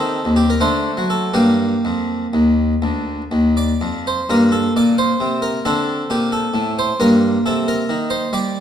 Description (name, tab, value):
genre	classical, baroque-style suite movement for harpsichord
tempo	79-91 BPM (dotted quarters)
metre	12/8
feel	rubato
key	G minor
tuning	A4 = 438 Hz
part	harpsichord	solo	0.0-8.6 s	D2 to D5	-15 LUFS	equal	none
room	wet recital hall reverb, RT60 1.8 s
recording	none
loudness	-15 LUFS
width	side -9 dB against mid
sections	0.0-4.3 A section; 4.3-8.6 B section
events	none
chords	0.0 Cm/Eb; 0.6 D7; 1.3 Gm; 5.7 D5; 7.0 Gm